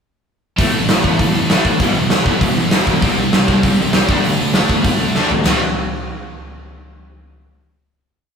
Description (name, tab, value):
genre	punk rock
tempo	197 BPM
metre	4/4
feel	straight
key	unclear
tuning	A4 = 440 Hz
part	distorted electric guitar	riff	0.6-5.6 s	E2 to D4	-21 LUFS	left 2 dB	overdrive
part	scooped high-gain guitar	riff	0.6-5.6 s	E2 to D4	-21 LUFS	equal	distortion
part	tight distorted guitar	riff	0.6-5.6 s	E2 to D4	-23 LUFS	right 4 dB	none
part	fuzz picked electric bass	bass	0.6-5.6 s	E1 to B2	-27 LUFS	equal	none
part	big rock drum kit	drums	0.6-5.5 s	hi-hat, kick drum, ride cymbal, snare drum, toms	-15 LUFS	equal	none
room	moderate stone room reverb, RT60 1.0 s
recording	rough rehearsal-room recording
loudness	-13 LUFS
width	side -6 dB against mid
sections	0.6-5.5 verse; 5.5-6.7 final chord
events	drum fill 5.2-5.5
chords	0.6 A5; 1.8 E5; 3.0 C5; 4.1 D5; 5.5 E5